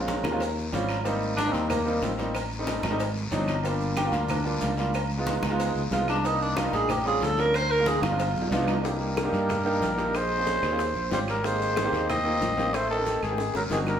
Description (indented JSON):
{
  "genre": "Afro-Cuban jazz",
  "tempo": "185 BPM",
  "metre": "4/4",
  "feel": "straight",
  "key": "C minor",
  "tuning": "A4 = 442 Hz",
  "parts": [
    { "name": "clear upright piano", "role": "accompaniment", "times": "0.0-13.9 s", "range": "Gb3 to Ab4", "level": "-30 LUFS", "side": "right 1 dB", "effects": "none" },
    { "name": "sustaining fretless electric bass", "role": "bass", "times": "0.0-14.0 s", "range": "G1 to G2", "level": "-30 LUFS", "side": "equal", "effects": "none" },
    { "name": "congas", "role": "percussion", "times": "0.1-14.0 s", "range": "none", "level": "-36 LUFS", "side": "left 2 dB", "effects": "none" },
    { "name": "cowbell and bongos", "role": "percussion", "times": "0.1-13.9 s", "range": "none", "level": "-37 LUFS", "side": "left 4 dB", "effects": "none" },
    { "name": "guiro", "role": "percussion", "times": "0.1-14.0 s", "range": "none", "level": "-41 LUFS", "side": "left 3 dB", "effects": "none" },
    { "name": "maracas", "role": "percussion", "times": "0.1-14.0 s", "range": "none", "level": "-45 LUFS", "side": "right 1 dB", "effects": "none" },
    { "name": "timbales and agogo bells", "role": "percussion", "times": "0.1-14.0 s", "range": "none", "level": "-36 LUFS", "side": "right 2 dB", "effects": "none" },
    { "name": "claves", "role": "percussion", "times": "0.2-14.0 s", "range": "none", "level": "-43 LUFS", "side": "right 4 dB", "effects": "none" },
    { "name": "warm tenor saxophone", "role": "second line", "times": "1.4-14.0 s", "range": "Eb3 to C5", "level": "-29 LUFS", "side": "right 1 dB", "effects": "none" },
    { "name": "growling trumpet", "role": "melody", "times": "8.9-14.0 s", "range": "Ab4 to Eb5", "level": "-27 LUFS", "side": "equal", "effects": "none" }
  ],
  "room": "wet studio reverb, RT60 0.9 s",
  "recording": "heard from further back in the room",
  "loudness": "-24 LUFS",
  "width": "side -9 dB against mid",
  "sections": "0.0-8.8 A section; 8.8-14.0 B section",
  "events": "tenor saxophone solo 0.0-8.8; drum fill 8.2-8.8, 13.4-14.0",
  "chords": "0.4 Eb13; 1.1 Abmaj9; 2.4 Am7b5; 3.0 Ab7#11; 3.7 Gm7; 5.0 Db9; 6.2 Cm9; 6.9 A7alt; 7.5 Dm7b5; 8.2 G7b13; 8.8 Cm9; 10.1 Bbm7; 10.8 Eb13; 11.4 Abmaj9; 12.7 Am7b5; 13.4 Ab7#11"
}